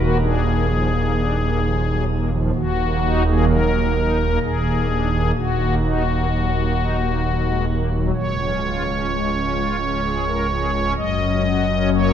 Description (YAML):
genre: classical, chorale-style piece for pipe organ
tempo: 64 BPM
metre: 3/4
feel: straight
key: Eb minor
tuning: A4 = 441 Hz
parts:
  - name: pipe organ, strings celeste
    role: solo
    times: 0.0-12.1 s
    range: Db1 to Eb5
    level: -18 LUFS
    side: equal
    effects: none
room: wet church reverb, RT60 2.9 s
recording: minimal, uncompressed stereo recording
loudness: -18 LUFS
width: side -9 dB against mid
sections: 0.0-12.1 A section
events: none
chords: 0.0 Bb7/Eb; 2.6 Ebm; 4.4 Bb7/Eb; 5.3 Ebm; 8.1 Db; 11.0 Gb